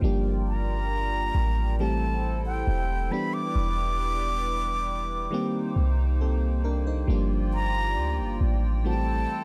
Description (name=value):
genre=R&B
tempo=68 BPM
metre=4/4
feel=straight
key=unclear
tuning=A4 = 438 Hz
part: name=FM electric piano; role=accompaniment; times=0.0-9.4 s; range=Eb3 to C5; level=-34 LUFS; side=equal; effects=chorus
part: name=hollow soft pad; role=sustained chords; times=0.0-9.4 s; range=Bb3 to G5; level=-39 LUFS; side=equal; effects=chorus
part: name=clean 808-style bass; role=bass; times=0.0-9.3 s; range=E1 to D2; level=-28 LUFS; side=equal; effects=none
part: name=breathy concert flute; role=melody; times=0.5-9.4 s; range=G5 to D6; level=-32 LUFS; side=equal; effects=none
room=little or no reverb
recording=dry, gritty hardware recording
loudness=-26 LUFS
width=mono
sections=0.0-9.4 A section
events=none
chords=0.0 Gm7; 1.8 Am7; 3.1 Em7; 5.3 Cm7; 7.1 Gm7; 8.8 Am7